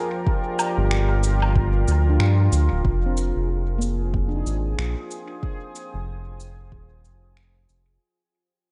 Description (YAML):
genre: ambient dub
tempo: 93 BPM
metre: 4/4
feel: swing 59% on 16ths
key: F dorian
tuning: A4 = 444 Hz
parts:
  - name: trumpet with bucket mute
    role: melody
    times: 0.0-2.5 s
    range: G4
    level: -35 LUFS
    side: equal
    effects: dub echo
  - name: deep dark ambient pad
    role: sustained chords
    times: 0.0-8.0 s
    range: F3 to Eb6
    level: -32 LUFS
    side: equal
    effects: chorus, built-in reverb
  - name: handpan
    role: arpeggios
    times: 0.0-6.6 s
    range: Bb3 to D5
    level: -36 LUFS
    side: equal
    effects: dub echo
  - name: electronic kick drum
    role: drums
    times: 0.3-6.9 s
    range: none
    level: -26 LUFS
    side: equal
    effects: overdrive
  - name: electronic cabasa, woodblock and finger snaps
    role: drums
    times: 0.6-7.8 s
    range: none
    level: -32 LUFS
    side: equal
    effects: dub echo
  - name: round analog bass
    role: bass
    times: 0.8-8.0 s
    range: D1 to G2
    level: -23 LUFS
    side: equal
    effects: none
  - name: bubbling stepped-filter texture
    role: texture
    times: 3.4-8.0 s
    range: Ab4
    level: -44 LUFS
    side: equal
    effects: chorus, built-in reverb
room: light reverb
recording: nothing above 10.8 kHz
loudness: -22 LUFS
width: mono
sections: 0.0-2.8 A section; 2.8-8.0 B section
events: fade-out 2.8-8.0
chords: 0.0 Gm7; 2.8 Fm7